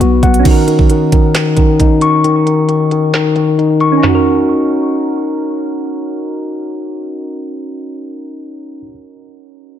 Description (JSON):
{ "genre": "hip hop, trap", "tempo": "134 BPM", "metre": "4/4", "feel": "half-time", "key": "Eb minor", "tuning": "A4 = 440 Hz", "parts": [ { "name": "soft electric-piano-like synth keys", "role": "accompaniment", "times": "0.0-9.8 s", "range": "F#3 to B4", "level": "-19 LUFS", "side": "right 7 dB", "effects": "chorus" }, { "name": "mellow tine electric piano", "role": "arpeggios", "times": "0.0-8.9 s", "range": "Eb3 to Db6", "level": "-13 LUFS", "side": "left 4 dB", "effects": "ping-pong delay" }, { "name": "trap drum kit", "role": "drums", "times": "0.0-4.1 s", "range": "crash cymbal, handclaps, hi-hat, kick drum, snare drum, toms", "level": "-13 LUFS", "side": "right 2 dB", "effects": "none" } ], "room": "light reverb, digital ambience", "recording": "low-pass filter", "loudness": "-10 LUFS", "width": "side -10 dB against mid", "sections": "0.5-4.0 A section; 4.0-7.6 B section", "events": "filter sweep 0.5-4.0; break 2.2-4.0", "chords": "0.5 Ebm7", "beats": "0.00 | 0.45 0.90 1.35 1.79 | 2.24 2.69 3.14 3.59 | 4.03 4.48 4.93 5.38 | 5.83 6.27 6.72 7.17" }